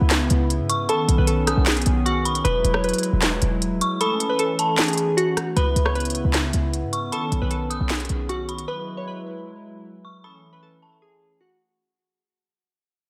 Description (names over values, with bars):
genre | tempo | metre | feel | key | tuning
hip hop, trap | 154 BPM | 4/4 | half-time | C# minor | A4 = 440 Hz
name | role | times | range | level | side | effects
glassy digital keys | melody | 0.0-11.6 s | F#4 to C#5 | -29 LUFS | equal | chorus, phaser, low-pass filter, tape echo
hollow soft pad | sustained chords | 0.0-11.8 s | C#3 to E4 | -30 LUFS | equal | chorus
short 808-style bass | bass | 0.0-8.7 s | D#1 to G#2 | -25 LUFS | equal | none
trap drum kit | drums | 0.1-8.7 s | handclaps, hi-hat, rim click, snare drum | -27 LUFS | equal | none
dark detuned synth bell | second line | 0.7-11.0 s | A5 to D#6 | -31 LUFS | equal | chorus, tape echo
room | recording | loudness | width
moderate plate reverb, RT60 1.4 s | dreamy mix soaked in reverb | -22 LUFS | mono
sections
0.0-5.6 A section; 5.6-11.8 B section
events
kick muted 4.0-5.6; fade-out 5.6-11.8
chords
0.0 C#m7; 0.9 Badd9; 2.4 Eadd9; 4.0 A; 5.6 C#m7; 7.1 Badd9; 8.7 Eadd9; 10.2 A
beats
0.11 0.50 | 0.89 1.28 1.67 2.06 | 2.45 2.84 3.23 3.62 | 4.01 4.39 4.79 5.17 | 5.56 5.95 6.34 6.73 | 7.12 7.51 7.90 8.29 | 8.68 9.07 9.46 9.85 | 10.24 10.63 11.02 11.41